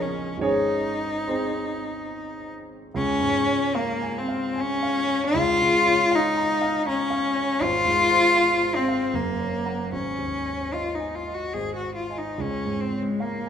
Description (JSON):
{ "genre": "classical, romantic duo for cello and grand piano", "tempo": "69-82 BPM", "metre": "3/4", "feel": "rubato", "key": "Db major", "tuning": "A4 = 440 Hz", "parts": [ { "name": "rich cello", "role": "melody", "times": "0.0-13.5 s", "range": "Ab3 to Ab4", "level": "-22 LUFS", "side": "left 2 dB", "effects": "none" }, { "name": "warm baby grand piano", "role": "accompaniment", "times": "0.0-13.5 s", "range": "Gb1 to C6", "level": "-28 LUFS", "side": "right 2 dB", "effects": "none" } ], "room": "wet recital hall reverb, RT60 1.7 s", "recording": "minimal, uncompressed stereo recording", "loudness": "-21 LUFS", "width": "side -8 dB against mid", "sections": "0.0-2.9 A section; 2.9-13.5 B section", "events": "none", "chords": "0.4 Ab; 2.9 Db; 5.3 Bbm/Db; 7.6 Fm/Ab; 9.1 Gb; 9.9 Absus4; 11.6 Ab; 12.4 Db" }